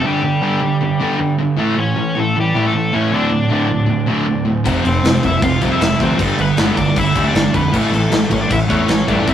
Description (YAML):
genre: punk rock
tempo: 156 BPM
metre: 4/4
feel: straight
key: unclear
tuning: A4 = 438 Hz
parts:
  - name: crunchy overdriven guitar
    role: melody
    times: 0.0-9.3 s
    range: G3 to F5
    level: -20 LUFS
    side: left 3 dB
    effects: none
  - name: distorted electric guitar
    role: riff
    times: 0.0-9.3 s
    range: D2 to C4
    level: -21 LUFS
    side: left 4 dB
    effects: distortion
  - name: sludgy distorted guitar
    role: riff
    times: 0.0-9.3 s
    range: D2 to C4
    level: -18 LUFS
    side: right 4 dB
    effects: overdrive
  - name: growling picked electric bass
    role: bass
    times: 4.7-9.3 s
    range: F1 to G2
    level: -22 LUFS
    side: left 1 dB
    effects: overdrive
  - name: big rock drum kit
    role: drums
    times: 4.7-9.3 s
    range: crash cymbal, kick drum, snare drum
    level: -18 LUFS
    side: left 1 dB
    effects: none
room: moderate stone room reverb, RT60 1.2 s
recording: rough rehearsal-room recording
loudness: -13 LUFS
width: side -10 dB against mid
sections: 0.0-9.3 A section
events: none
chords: 0.0 G5; 1.6 A; 3.1 D5; 4.7 F5; 6.2 G; 7.7 A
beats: | 0.04 0.42 0.81 1.19 | 1.58 1.96 2.35 2.73 | 3.12 3.50 3.88 4.27 | 4.66 5.04 5.42 5.81 | 6.19 6.58 6.96 7.35 | 7.73 8.12 8.50 8.89 | 9.27